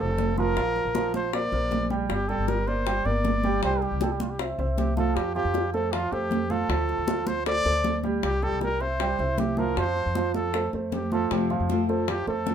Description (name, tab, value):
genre	latin, Cuban son and guajira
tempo	156 BPM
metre	4/4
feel	straight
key	F major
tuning	A4 = 444 Hz
part	breathy trumpet	melody	0.0-12.5 s	F4 to D5	-29 LUFS	left 1 dB	none
part	dark grand piano	arpeggios	0.0-12.5 s	F3 to G5	-29 LUFS	right 4 dB	none
part	upright bass	bass	0.0-12.5 s	F1 to F2	-30 LUFS	equal	none
part	bongos	percussion	0.2-12.5 s	none	-34 LUFS	left 6 dB	none
part	congas	percussion	0.2-12.5 s	none	-31 LUFS	right 2 dB	none
part	nylon-string guitar	accompaniment	11.3-12.5 s	C3 to F4	-26 LUFS	left 5 dB	none
room	moderate studio ambience, RT60 0.5 s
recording	minimal, uncompressed stereo recording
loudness	-23 LUFS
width	side -8 dB against mid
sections	0.0-12.5 A section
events	none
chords	0.0 F; 0.6 Bbadd9; 2.1 Gm; 3.6 C; 5.2 F; 6.7 Dm7; 8.2 C; 9.8 F